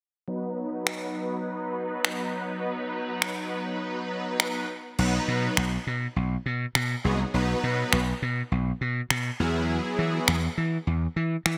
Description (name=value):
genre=dance-pop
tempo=102 BPM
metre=4/4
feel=straight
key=B major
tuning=A4 = 439 Hz
part: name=big bright polysynth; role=accompaniment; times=0.3-10.3 s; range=F#3 to B4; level=-32 LUFS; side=equal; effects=ensemble chorus, low-pass filter
part: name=house drum kit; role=drums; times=0.9-11.6 s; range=crash cymbal, finger snaps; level=-30 LUFS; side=equal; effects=gated reverb
part: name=gritty slap bass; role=bass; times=5.0-11.6 s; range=B1 to E3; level=-28 LUFS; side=equal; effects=overdrive
room=moderate lush hall reverb, RT60 1.9 s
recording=bright 1980s-style digital production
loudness=-28 LUFS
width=mono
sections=0.3-5.0 A section; 5.0-11.6 B section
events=filter sweep on analog polysynth 0.3-5.0; kick muted 3.8-5.0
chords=0.3 B; 4.7 N.C.; 5.0 B; 9.4 Eadd9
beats=| 0.28 0.87 1.46 2.05 | 2.63 3.22 3.81 4.40 | 4.99 5.58 6.16 6.75 | 7.34 7.93 8.52 9.10 | 9.69 10.28 10.87 11.46